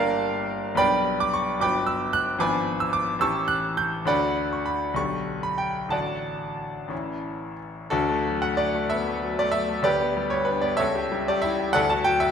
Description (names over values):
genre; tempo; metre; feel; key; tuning
classical, romantic character piece for solo piano; 58-76 BPM (dotted quarters); 6/8; rubato; D major; A4 = 439 Hz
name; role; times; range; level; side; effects
bright grand piano; solo; 0.0-12.3 s; G1 to G6; -22 LUFS; equal; none
room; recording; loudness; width
wet recital hall reverb, RT60 1.4 s; none; -22 LUFS; side -7 dB against mid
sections
0.0-7.9 A section; 7.9-12.3 B section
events
none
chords
0.0 Gm7; 0.8 G/B; 1.6 Gmaj7; 2.4 G#dim7; 3.2 A7; 4.1 D; 5.0 G/B; 5.9 D/A; 6.9 A; 7.9 D; 9.8 G/D; 10.8 A7/C#; 11.8 D